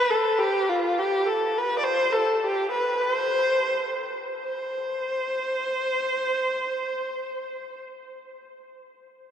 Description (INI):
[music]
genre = turkish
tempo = free time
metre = none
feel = none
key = unclear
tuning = A4 = 440 Hz
[part]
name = rich kamancheh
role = solo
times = 0.0-7.8 s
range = F4 to D5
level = -23 LUFS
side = equal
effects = none
[sound]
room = wet cathedral reverb, RT60 6.5 s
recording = in a vast, echoing space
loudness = -23 LUFS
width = side -8 dB against mid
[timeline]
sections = 0.0-4.4 A section; 4.4-7.0 B section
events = none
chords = none